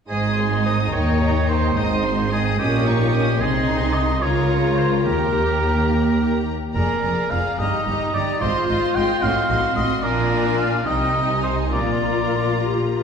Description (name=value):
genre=quick classical-period movement for symphony orchestra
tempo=72 BPM (dotted quarters)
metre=6/8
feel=rubato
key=Ab major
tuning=A4 = 441 Hz
part: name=warm studio violin section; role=melody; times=0.1-13.0 s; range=G5 to Eb6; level=-31 LUFS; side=left 3 dB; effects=none
part: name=rich chamber violin section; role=second line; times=0.1-13.0 s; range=C4 to Eb5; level=-28 LUFS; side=left 1 dB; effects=none
part: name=warm oboe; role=second line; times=0.1-12.6 s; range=G4 to G5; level=-23 LUFS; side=equal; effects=none
part: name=rich studio viola section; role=accompaniment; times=0.1-13.0 s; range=C4 to G4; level=-26 LUFS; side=left 1 dB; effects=none
part: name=rich chamber double bass section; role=bass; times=0.1-13.0 s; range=F1 to Eb2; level=-23 LUFS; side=right 1 dB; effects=none
part: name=warm chamber cello section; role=bass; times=0.1-13.0 s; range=Eb2 to Db3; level=-25 LUFS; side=right 1 dB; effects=none
part: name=warm clarinet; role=second line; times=12.6-13.0 s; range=G4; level=-26 LUFS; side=equal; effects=none
room=wet scoring stage reverb, RT60 1.8 s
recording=heard from further back in the room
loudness=-18 LUFS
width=side -6 dB against mid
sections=0.1-13.0 A section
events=none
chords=0.1 Ab; 0.9 Eb7; 1.8 Ab; 2.6 Eb7/Bb; 3.4 Ab/C; 4.2 Bbm/Db; 5.0 Eb; 6.7 Bb7/F; 7.6 Eb/G; 8.4 Fm7/Ab; 9.2 Adim7; 10.0 Bb7; 10.9 Cm; 11.7 Bb